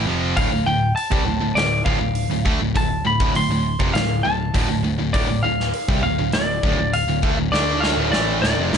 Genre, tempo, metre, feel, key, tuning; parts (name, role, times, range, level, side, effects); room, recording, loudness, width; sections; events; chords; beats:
hard rock; 101 BPM; 4/4; straight; D minor; A4 = 440 Hz
lightly driven lead guitar; melody; 0.0-8.8 s; D5 to C6; -23 LUFS; left 2 dB
distorted electric guitar; riff; 0.0-8.8 s; D2 to D4; -25 LUFS; right 12 dB; overdrive
scooped high-gain guitar; riff; 0.0-8.8 s; D2 to D4; -25 LUFS; left 9 dB; distortion
picked electric bass; bass; 0.0-8.8 s; D1 to D2; -25 LUFS; equal
big rock drum kit; drums; 0.4-8.8 s; hi-hat, kick drum, snare drum; -24 LUFS; equal
little or no reverb; nothing above 10.7 kHz; -17 LUFS; side -7 dB against mid
0.0-8.8 A section
drum fill 7.5-8.8
0.0 Dm
| 0.37 0.97 1.56 2.16 | 2.75 3.35 3.95 4.54 | 5.14 5.74 6.33 6.93 | 7.53 8.12 8.72